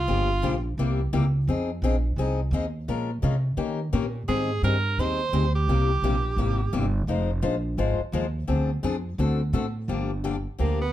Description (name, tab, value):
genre	acoustic string swing (jazz manouche)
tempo	171 BPM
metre	4/4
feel	swing 61% on 8ths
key	unclear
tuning	A4 = 441 Hz
part	edgy tenor saxophone	melody	0.0-0.6, 4.3-6.9, 10.6-10.9 s	Bb3 to C5	-28 LUFS	right 4 dB	none
part	upright bass	bass	0.0-10.9 s	F1 to Eb3	-25 LUFS	right 1 dB	none
part	picked acoustic archtop guitar	accompaniment	0.1-10.8 s	C3 to C5	-28 LUFS	left 5 dB	none
room	light reverb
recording	dark, warm production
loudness	-23 LUFS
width	side -13 dB against mid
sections	0.0-9.9 A section; 9.9-10.9 B section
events	tenor saxophone solo 9.9-10.9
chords	0.1 Gm7b5; 0.8 C7b9; 1.5 Fm7; 2.9 Bbm9; 3.6 Eb7; 4.3 Abmaj9; 5.7 C7b13; 7.1 Fm7; 8.5 Dm7b5; 9.2 D7; 9.9 Gm7